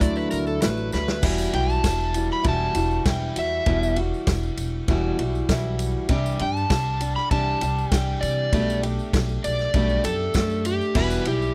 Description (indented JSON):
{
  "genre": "folk rock and heartland rock",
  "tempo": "99 BPM",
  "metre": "4/4",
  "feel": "straight",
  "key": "E minor",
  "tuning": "A4 = 440 Hz",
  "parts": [
    { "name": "overdriven slide guitar", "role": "second line", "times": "0.0-11.5 s", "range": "G4 to B5", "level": "-28 LUFS", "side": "equal", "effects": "none" },
    { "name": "picked steel-string acoustic guitar", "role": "accompaniment", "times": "0.0-11.5 s", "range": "E2 to G4", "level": "-29 LUFS", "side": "equal", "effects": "none" },
    { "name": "upright bass", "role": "bass", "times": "0.0-11.5 s", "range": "E1 to C3", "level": "-29 LUFS", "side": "equal", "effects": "none" },
    { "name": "vintage drum kit", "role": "drums", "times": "0.0-11.4 s", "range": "crash cymbal, hi-hat, kick drum, ride cymbal, snare drum", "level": "-29 LUFS", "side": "equal", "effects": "none" },
    { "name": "tambourine", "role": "percussion", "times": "0.0-11.5 s", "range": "none", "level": "-44 LUFS", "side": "equal", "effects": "none" }
  ],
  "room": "little or no reverb",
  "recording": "dry, close 1970s-style studio recording",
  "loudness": "-23 LUFS",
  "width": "mono",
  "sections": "0.0-1.2 A section; 1.2-11.5 B section",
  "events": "drum fill 0.9-1.2; electric slide guitar solo 1.2-11.5",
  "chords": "0.0 Dadd9; 1.2 Emadd9; 6.1 Cadd9; 8.5 Gadd9/B; 11.0 Emadd9"
}